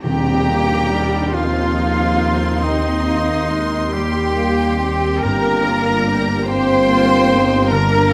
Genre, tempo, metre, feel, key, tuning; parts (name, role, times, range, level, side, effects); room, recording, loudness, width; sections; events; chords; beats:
classical, slow romantic movement for symphony orchestra; 45-50 BPM (dotted quarters); 12/8; rubato; Eb major; A4 = 441 Hz
rich studio violin section; melody; 0.0-8.1 s; F5 to C6; -30 LUFS; equal
bright silver concert flute; second line; 0.0-8.1 s; Eb5 to C6; -29 LUFS; equal
clear clarinet; second line; 0.0-8.1 s; G3 to D4; -28 LUFS; equal
rich studio violin section; second line; 0.0-8.1 s; Eb5 to C6; -32 LUFS; equal
warm oboe; second line; 0.0-8.1 s; Eb4 to C5; -27 LUFS; equal
rich studio viola section; accompaniment; 0.0-8.1 s; Bb3 to G4; -27 LUFS; equal
dark French horn section; sustained chords; 0.0-8.1 s; Eb3 to C4; -24 LUFS; equal
concert harp; arpeggios; 0.0-8.1 s; G2 to G5; -32 LUFS; equal
mellow tuba; bass; 0.0-8.1 s; G1 to Eb2; -28 LUFS; equal
rich studio double bass section; bass; 0.0-8.1 s; G1 to Eb2; -26 LUFS; equal
warm studio cello section; bass; 0.0-8.1 s; Eb4 to C5; -24 LUFS; equal
tam-tam; percussion; 0.0-3.5 s; -31 LUFS; equal
moderate scoring stage reverb, RT60 1.6 s; -17 LUFS; mono
0.0-8.1 A section
band accent 0.0-0.9
0.0 Eb; 5.2 Gm
| 0.04 1.34 2.62 3.93 | 5.23 6.49 7.70